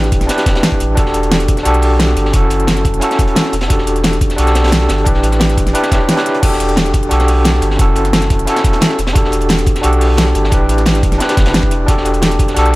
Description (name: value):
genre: liquid drum and bass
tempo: 176 BPM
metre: 4/4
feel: straight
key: E dorian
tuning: A4 = 439 Hz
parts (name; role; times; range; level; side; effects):
- overdriven tine electric piano; accompaniment; 0.0-12.8 s; C#4 to C#5; -15 LUFS; equal; fast tremolo, low-pass filter, dub echo
- warm sub bass; bass; 0.0-12.8 s; E1 to B1; -16 LUFS; equal; none
- crunchy breakbeat drum kit; drums; 0.0-12.8 s; hi-hat, snare drum; -23 LUFS; equal; high-pass filter on hats, high-pass filter on snare, high-pass filter on room
- pop drum kit; drums; 0.0-12.7 s; crash cymbal, hi-hat, snare drum; -18 LUFS; equal; none
- electronic kick drum; drums; 0.1-12.5 s; none; -15 LUFS; equal; none
room: small room ambience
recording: none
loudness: -11 LUFS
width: side -19 dB against mid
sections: 0.0-12.8 A section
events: none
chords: 0.0 A9sus4; 1.0 Em11; 2.3 F#m7; 3.5 Em11; 5.1 A9sus4; 6.4 Em11; 7.8 F#m7; 9.0 Em11; 10.5 A9sus4; 11.9 Em11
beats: 0.29 0.63 | 0.97 1.32 1.66 2.00 | 2.34 2.68 3.02 3.36 | 3.70 4.04 4.38 4.72 | 5.07 5.41 5.75 6.09 | 6.43 6.77 7.11 7.45 | 7.79 8.13 8.47 8.82 | 9.16 9.50 9.84 10.18 | 10.52 10.86 11.20 11.54 | 11.88 12.22 12.57